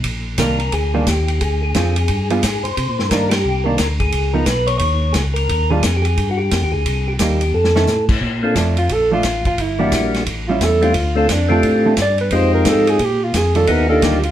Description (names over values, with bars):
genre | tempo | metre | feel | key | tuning
soul jazz organ trio | 176 BPM | 4/4 | swing 63% on 8ths | Bb major | A4 = 438 Hz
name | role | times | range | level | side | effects
tonewheel organ | bass | 0.0-14.3 s | G1 to C3 | -19 LUFS | equal | overdrive, chorus vibrato, slow rotary speaker
warm soul drum kit | drums | 0.0-14.3 s | crash cymbal, hi-hat, kick drum, ride cymbal, snare drum | -22 LUFS | equal | none
percussive tonewheel organ | melody | 0.4-14.2 s | G3 to Db5 | -19 LUFS | left 2 dB | slow rotary speaker, plate reverb
hollow-body jazz guitar | accompaniment | 0.4-14.2 s | D3 to Ab4 | -21 LUFS | right 3 dB | none
breathy alto saxophone | melody | 8.8-14.3 s | D4 to D5 | -18 LUFS | right 2 dB | plate reverb
room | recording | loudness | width
wet studio reverb, RT60 0.6 s | heard from further back in the room | -14 LUFS | side -11 dB against mid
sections
0.0-8.2 A section; 8.2-14.3 B section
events
band accent 3.3; drum fill 7.5-7.9; alto saxophone solo 8.2-14.3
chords
0.0 Ebmaj7; 1.4 Dm7b5; 2.1 G7b9; 2.8 Cm9; 4.1 Db7sus2; 5.5 Ebmaj9; 6.9 Cm7; 7.5 Faug7; 8.2 Bbmaj7; 9.6 Em7b5; 10.3 A7; 10.9 Dm7; 12.3 Fm7; 13.0 Bb; 13.7 Ebmaj9